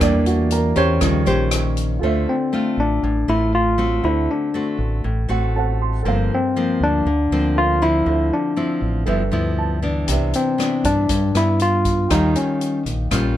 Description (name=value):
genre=bossa nova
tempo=119 BPM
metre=4/4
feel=straight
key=D minor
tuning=A4 = 439 Hz
part: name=nylon-string guitar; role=accompaniment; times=0.0-13.4 s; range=G2 to C5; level=-22 LUFS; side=left 1 dB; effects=none
part: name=warm baby grand piano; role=accompaniment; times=0.0-13.4 s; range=Db3 to C6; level=-25 LUFS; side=right 5 dB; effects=none
part: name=deep dub fingered electric bass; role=bass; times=0.0-13.3 s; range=G1 to G2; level=-21 LUFS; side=equal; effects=none
part: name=swinging big-band drum kit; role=drums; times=0.0-1.9, 10.1-13.2 s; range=hi-hat, kick drum, rim click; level=-25 LUFS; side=left 1 dB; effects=none
part: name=barky tine electric piano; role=melody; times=2.3-12.8 s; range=C4 to F4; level=-19 LUFS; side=left 2 dB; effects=none
room=little or no reverb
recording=none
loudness=-17 LUFS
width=side -12 dB against mid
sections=0.0-2.0 A section; 2.0-13.4 B section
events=grand piano solo 0.0-2.0; grand piano fill 5.0-6.0, 9.3-10.1, 13.1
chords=0.0 Em7b5; 1.0 Eb13; 2.0 Dm7; 4.0 D7; 6.0 Gm11; 8.1 Dm9; 9.1 G13; 10.1 Cmaj9; 12.1 Eb9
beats=| 0.00 0.50 1.01 1.51 | 2.01 2.52 3.02 3.52 | 4.03 4.53 5.04 5.54 | 6.05 6.55 7.05 7.56 | 8.06 8.57 9.07 9.58 | 10.08 10.59 11.09 11.60 | 12.10 12.61 13.11